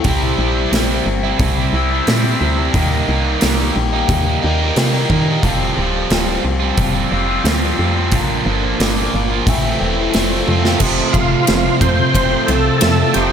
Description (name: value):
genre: classic rock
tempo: 89 BPM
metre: 4/4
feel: straight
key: unclear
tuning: A4 = 441 Hz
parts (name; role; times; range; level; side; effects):
- distorted electric guitar; riff; 0.0-13.3 s; F2 to F4; -20 LUFS; right 10 dB; overdrive, slapback echo
- overdriven electric guitar; riff; 0.0-13.3 s; F2 to F4; -20 LUFS; left 6 dB; phaser, slapback echo
- big rock drum kit; drums; 0.0-13.3 s; crash cymbal, hi-hat, kick drum, ride cymbal, snare drum, toms; -19 LUFS; equal; none
- woody FM bass; bass; 0.1-13.3 s; D1 to Eb3; -19 LUFS; equal; none
- picked steel-string acoustic guitar; accompaniment; 10.8-13.3 s; F2 to F4; -24 LUFS; right 7 dB; slapback echo
- overdriven tonewheel organ; melody; 11.1-13.3 s; F4 to C5; -17 LUFS; right 2 dB; slow rotary speaker, chorus vibrato, slapback echo
room: moderate lush hall reverb, RT60 2.6 s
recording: big arena sound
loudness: -13 LUFS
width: side -8 dB against mid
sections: 0.0-10.8 A section; 10.8-13.3 B section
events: drum fill 10.5-10.8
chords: 0.1 C; 2.7 Eb; 5.4 Fsus2; 8.1 Bb; 9.5 Am; 10.1 F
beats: | 0.05 0.73 1.40 2.07 | 2.75 3.42 4.09 4.76 | 5.43 6.11 6.78 7.45 | 8.12 8.79 9.47 10.14 | 10.81 11.48 12.15 12.82